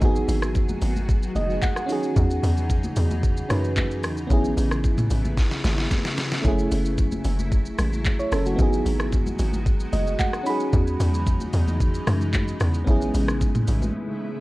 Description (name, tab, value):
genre	amapiano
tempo	112 BPM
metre	4/4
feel	straight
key	unclear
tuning	A4 = 440 Hz
part	mellow FM electric piano	accompaniment	0.0-14.4 s	A3 to B5	-27 LUFS	right 1 dB	chorus
part	granular cloud pad	sustained chords	0.0-14.4 s	C#3 to G#4	-31 LUFS	left 1 dB	built-in reverb, sidechain pumping
part	hollow log drum bass	bass	0.0-13.9 s	F#1 to F#2	-24 LUFS	equal	none
part	smooth R&B drum kit	drums	0.0-13.9 s	handclaps, hi-hat, kick drum, rim click, shaker, snare drum, toms	-24 LUFS	equal	none
part	congas	percussion	0.0-13.9 s	none	-34 LUFS	left 1 dB	none
room	little or no reverb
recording	worn, warbling old tape, cassette tape, warbly pitch drift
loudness	-20 LUFS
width	side -19 dB against mid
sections	0.0-14.4 A section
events	FM electric piano fill 1.1-2.2, 9.7-10.7; drum fill 5.4-6.4; break 13.9-14.4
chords	0.0 G#m7; 1.9 Emaj13; 4.3 Amaj9; 6.4 F#m9; 8.6 G#m7; 10.5 Emaj13; 12.9 Amaj9